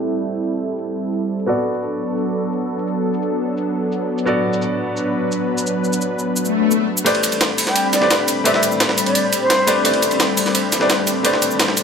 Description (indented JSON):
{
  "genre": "liquid drum and bass",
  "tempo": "172 BPM",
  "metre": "4/4",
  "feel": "straight",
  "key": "A dorian",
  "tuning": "A4 = 440 Hz",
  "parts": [
    { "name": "clear grand piano", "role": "accompaniment", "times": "0.0-11.8 s", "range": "A3 to D5", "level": "-21 LUFS", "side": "left 1 dB", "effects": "ping-pong delay" },
    { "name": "warm analog pad", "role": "sustained chords", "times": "0.0-11.8 s", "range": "F#3 to B5", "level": "-21 LUFS", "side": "equal", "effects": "chorus" },
    { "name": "electronic cabasa and hi-hat", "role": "drums", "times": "0.0-11.8 s", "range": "none", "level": "-22 LUFS", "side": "equal", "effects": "high-pass filter on perc, low-pass filter on perc, high-pass filter on hats, low-pass filter on hats, high-pass filter on room, low-pass filter on room" },
    { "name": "swell", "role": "sound effects", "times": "6.5-7.1 s", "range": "none", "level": "-18 LUFS", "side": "left 10 dB", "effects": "none" },
    { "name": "dark detuned saw bass", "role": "bass", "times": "7.1-11.8 s", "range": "E1 to A1", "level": "-33 LUFS", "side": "left 1 dB", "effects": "none" },
    { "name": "jungle sampler-style drum kit", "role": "drums", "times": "7.1-11.8 s", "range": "hi-hat, ride cymbal, snare drum", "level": "-20 LUFS", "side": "right 2 dB", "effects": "overdrive, high-pass filter on cymbals, high-pass filter on snare, high-pass filter on hats" },
    { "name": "breathy concert flute", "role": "melody", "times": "7.7-9.8 s", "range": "C5 to G5", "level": "-21 LUFS", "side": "right 1 dB", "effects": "low-pass filter, ping-pong delay" }
  ],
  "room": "moderate plate reverb, RT60 1.4 s",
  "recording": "low-pass filter",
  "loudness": "-16 LUFS",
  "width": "side -6 dB against mid",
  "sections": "0.0-7.1 A section; 7.1-11.8 B section",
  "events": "filter sweep on grand piano 0.0-7.1; filter sweep on analog synth pad 0.0-7.1; filter sweep 0.0-7.1; swell 6.5-7.1; build-up 7.1-11.8; filter sweep on flute 7.1-11.8",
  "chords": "0.0 Am11; 1.5 Bm7; 7.1 Am11",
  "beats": "| 0.08 0.43 0.78 1.13 | 1.48 1.83 2.18 2.53 | 2.88 3.22 3.57 3.92 | 4.27 4.62 4.97 5.32 | 5.67 6.01 6.36 6.71 | 7.06 7.41 7.76 8.11 | 8.46 8.80 9.15 9.50 | 9.85 10.20 10.55 10.90 | 11.25 11.60"
}